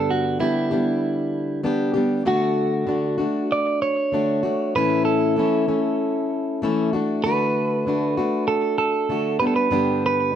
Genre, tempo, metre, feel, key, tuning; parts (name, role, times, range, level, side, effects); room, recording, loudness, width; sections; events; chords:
pop; 96 BPM; 4/4; straight; D major; A4 = 440 Hz
clean electric guitar; melody; 0.0-10.4 s; E4 to D5; -23 LUFS; right 4 dB; slapback echo
fingerpicked plugged-in steel-string acoustic guitar; accompaniment; 0.0-10.3 s; G2 to G4; -22 LUFS; left 2 dB
moderate small room ambience, RT60 0.5 s; -19 LUFS; side -9 dB against mid
0.0-10.4 A section
0.0 G; 2.3 D; 4.7 A; 6.9 D; 9.4 G